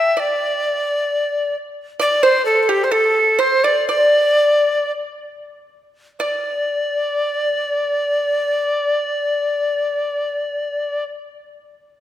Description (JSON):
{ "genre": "chinese traditional, Chinese chamber ensemble", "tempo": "44-67 BPM", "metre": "2/4", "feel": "rubato", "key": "D shang mode", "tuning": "A4 = 441 Hz", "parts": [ { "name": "breathy bright tenor recorder", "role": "melody", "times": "0.0-11.0 s", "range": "G4 to E5", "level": "-17 LUFS", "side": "left 1 dB", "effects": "none" }, { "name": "pipa", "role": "second line", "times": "0.0-11.0 s", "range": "G4 to D5", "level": "-22 LUFS", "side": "right 5 dB", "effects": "none" } ], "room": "wet concert hall reverb, RT60 2.3 s", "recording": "none", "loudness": "-16 LUFS", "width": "side -12 dB against mid", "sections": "0.0-6.2 A section; 6.2-11.4 B section", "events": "slowing down 2.0-6.2", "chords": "none" }